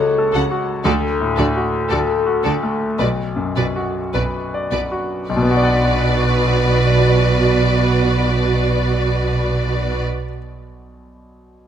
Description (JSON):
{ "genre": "cinematic, emotional film score for orchestra", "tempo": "52-60 BPM", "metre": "4/4", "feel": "rubato", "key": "B minor", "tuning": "A4 = 441 Hz", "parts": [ { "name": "bright concert grand piano", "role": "accompaniment", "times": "0.0-11.7 s", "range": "B1 to F#5", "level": "-21 LUFS", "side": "left 1 dB", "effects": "none" }, { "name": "concert harp", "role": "arpeggios", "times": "0.0-10.4 s", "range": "B2 to F#5", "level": "-25 LUFS", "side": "left 5 dB", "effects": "none" }, { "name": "warm symphonic violin section", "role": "second line", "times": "0.3-10.0 s", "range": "A4 to B4", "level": "-26 LUFS", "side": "left 1 dB", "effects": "none" }, { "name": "warm studio viola section", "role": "accompaniment", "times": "0.3-10.0 s", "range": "F#4", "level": "-24 LUFS", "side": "right 5 dB", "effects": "none" }, { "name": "warm studio cello section", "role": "bass", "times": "0.3-10.0 s", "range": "B2 to D3", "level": "-21 LUFS", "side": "right 3 dB", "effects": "none" }, { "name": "warm studio double bass section", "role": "bass", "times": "0.3-10.0 s", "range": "B1 to D2", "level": "-22 LUFS", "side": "right 3 dB", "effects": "none" }, { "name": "rich studio violin section", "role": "melody", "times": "0.4-10.0 s", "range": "D5 to F#5", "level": "-24 LUFS", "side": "left 4 dB", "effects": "none" } ], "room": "light reverb", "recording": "close, detailed microphones", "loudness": "-15 LUFS", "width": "side -9 dB against mid", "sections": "0.0-5.3 A section; 5.3-9.8 B section", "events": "slowing down 0.0-5.3", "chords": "0.0 F#m/C#; 0.8 D; 3.0 Bm", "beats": "| 0.85 1.90 2.99 4.14 | 5.28 6.41 7.55 8.67" }